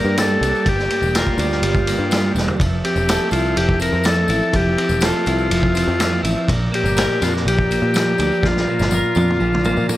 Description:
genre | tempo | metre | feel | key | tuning
psychedelic rock | 123 BPM | 4/4 | straight | unclear | A4 = 440 Hz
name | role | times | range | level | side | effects
combo organ | melody | 0.0-9.9 s | F4 to Bb4 | -20 LUFS | left 2 dB | tape echo
hand-pumped harmonium | sustained chords | 0.0-10.0 s | G4 to Bb5 | -31 LUFS | right 6 dB | none
clean electric guitar | riff | 0.0-10.0 s | G2 to Bb4 | -22 LUFS | right 1 dB | harmonic tremolo
picked electric bass | bass | 0.0-10.0 s | E1 to Bb2 | -22 LUFS | equal | none
tambourine | percussion | 0.1-10.0 s | none | -35 LUFS | left 10 dB | none
vintage drum kit | drums | 0.2-10.0 s | kick drum, ride cymbal, snare drum, toms | -22 LUFS | equal | none
room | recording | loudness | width
light reverb, studio ambience | none | -15 LUFS | side -15 dB against mid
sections
0.0-10.0 A section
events
drum fill 2.4, 8.4-10.0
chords
0.0 Gm; 2.6 Fmaj7; 6.5 Bb

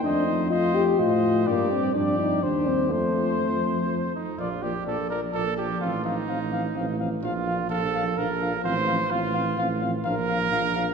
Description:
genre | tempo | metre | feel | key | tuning
classical, brass quintet | 127 BPM | 3/4 | straight | Bb major | A4 = 440 Hz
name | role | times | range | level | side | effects
warm cornet | melody | 0.0-10.9 s | C5 to F5 | -30 LUFS | left 5 dB | none
bright trumpet | second line | 0.0-10.9 s | Eb4 to C5 | -29 LUFS | right 4 dB | none
mellow French horn | accompaniment | 0.0-10.9 s | A3 to G4 | -28 LUFS | left 3 dB | none
warm euphonium | accompaniment | 0.0-10.9 s | F3 to A3 | -35 LUFS | right 1 dB | none
mellow tuba | bass | 0.0-10.9 s | A1 to A2 | -28 LUFS | right 2 dB | none
room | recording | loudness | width
wet church reverb, RT60 2.8 s | minimal, uncompressed stereo recording | -22 LUFS | side -6 dB against mid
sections
0.0-4.4 A section; 4.4-10.9 B section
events
none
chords
0.0 F7; 1.5 G5; 2.4 Cm/Eb; 2.9 F; 4.4 Bb; 5.8 F7/A; 7.2 Bb; 8.6 F/A; 10.1 Bb

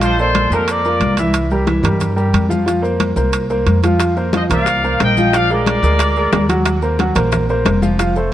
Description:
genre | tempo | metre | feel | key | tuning
latin, salsa | 180 BPM | 4/4 | straight | Bb major | A4 = 440 Hz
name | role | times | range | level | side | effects
bright trumpet section | melody | 0.0-1.2, 4.3-6.5 s | G4 to G5 | -18 LUFS | left 1 dB | none
clear grand piano | accompaniment | 0.0-8.3 s | E3 to Gb5 | -18 LUFS | right 1 dB | none
upright bass | bass | 0.0-8.3 s | F1 to G2 | -18 LUFS | equal | none
congas | percussion | 0.0-8.3 s | none | -21 LUFS | left 2 dB | none
maracas | percussion | 0.0-8.3 s | none | -36 LUFS | left 5 dB | none
timbales | percussion | 0.0-8.2 s | none | -25 LUFS | right 6 dB | none
bongos | percussion | 4.0-8.3 s | none | -25 LUFS | left 6 dB | none
room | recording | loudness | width
light reverb | worn, warbling old tape, cassette tape, warbly pitch drift | -13 LUFS | side -12 dB against mid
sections
0.0-8.3 A section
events
none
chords
0.0 Bbmaj7; 1.3 C7; 2.7 Fsus4; 5.3 Bb7; 6.7 Ebm6

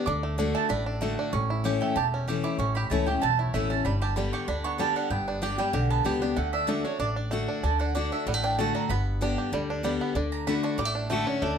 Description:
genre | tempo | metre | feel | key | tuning
bluegrass | 190 BPM | 4/4 | straight | D major | A4 = 440 Hz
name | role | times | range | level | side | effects
picked steel-string acoustic guitar | accompaniment | 0.0-11.6 s | E2 to G4 | -30 LUFS | left 4 dB | none
bluegrass banjo | arpeggios | 0.0-11.6 s | G3 to G4 | -32 LUFS | right 4 dB | none
mandolin | stabs | 0.1-10.9 s | B4 to D6 | -30 LUFS | right 6 dB | none
upright bass | bass | 0.1-11.6 s | E1 to D2 | -30 LUFS | equal | none
rich fiddle | melody | 11.1-11.6 s | A3 to D4 | -27 LUFS | left 2 dB | slapback echo
room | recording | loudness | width
moderate small room ambience, RT60 0.5 s | none | -25 LUFS | side -7 dB against mid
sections
0.0-1.3 A section; 1.3-11.4 A section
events
mandolin solo 0.0-11.4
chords
0.1 D; 1.3 A; 3.8 G; 6.4 D; 8.9 G; 10.2 D

